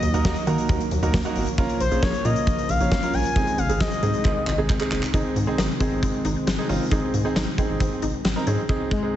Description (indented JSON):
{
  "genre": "synth-pop",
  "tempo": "135 BPM",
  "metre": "4/4",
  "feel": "straight",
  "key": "Ab mixolydian",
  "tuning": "A4 = 440 Hz",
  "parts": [
    { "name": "expressive synth lead", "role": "melody", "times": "0.0-4.7, 8.9-9.2 s", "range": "Ab3 to Ab5", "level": "-27 LUFS", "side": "left 3 dB", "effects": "chorus, ping-pong delay" },
    { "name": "warm analog pad", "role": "sustained chords", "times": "0.0-8.7 s", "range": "C3 to Bb3", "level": "-30 LUFS", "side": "left 1 dB", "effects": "wide subtle chorus" },
    { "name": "rubbery square bass", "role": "bass", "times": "0.0-8.6 s", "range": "Gb1 to Eb3", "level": "-26 LUFS", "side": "equal", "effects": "none" },
    { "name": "huge arena drum kit", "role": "drums", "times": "0.0-9.0 s", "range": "handclaps, hi-hat, kick drum, snare drum", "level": "-25 LUFS", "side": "equal", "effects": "none" },
    { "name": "bright grand piano", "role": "accompaniment", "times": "0.1-9.2 s", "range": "Ab3 to Db5", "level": "-27 LUFS", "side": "right 3 dB", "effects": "none" },
    { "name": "resonant blip pluck", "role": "arpeggios", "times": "5.1-8.6 s", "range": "C4 to Eb4", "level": "-33 LUFS", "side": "left 4 dB", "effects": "chorus, ping-pong delay" }
  ],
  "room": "light reverb, small room ambience",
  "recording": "heavily compressed radio sound, multiband compression, nothing above 8.0 kHz",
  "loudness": "-20 LUFS",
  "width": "side -12 dB against mid",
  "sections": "0.0-5.1 A section; 5.1-8.7 B section",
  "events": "drum fill 4.2-5.1",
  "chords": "0.0 Ebm; 1.6 Bbm; 3.4 Ab"
}